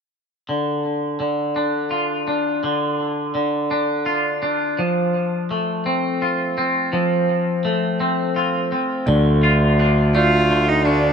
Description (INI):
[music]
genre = rock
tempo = 56 BPM (dotted quarters)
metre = 6/8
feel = straight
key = unclear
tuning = A4 = 440 Hz
[part]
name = twangy electric guitar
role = arpeggios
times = 0.5-11.1 s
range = D3 to F4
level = -19 LUFS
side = equal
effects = wide subtle chorus, tape echo
[part]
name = vibraphone with hard mallets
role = arpeggios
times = 9.1-11.1 s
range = D5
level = -27 LUFS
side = right 2 dB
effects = tape echo
[part]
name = fuzz fingered electric bass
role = bass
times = 9.1-11.1 s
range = D2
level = -16 LUFS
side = equal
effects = overdrive
[part]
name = clear cello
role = melody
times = 10.2-11.1 s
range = D4 to F4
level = -17 LUFS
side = right 1 dB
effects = tape echo
[sound]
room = light reverb, small room ambience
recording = dark, warm production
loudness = -17 LUFS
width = side -6 dB against mid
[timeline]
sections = 0.5-9.1 A section; 9.1-11.1 B section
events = none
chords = 0.5 Dm; 4.8 F; 9.1 Dm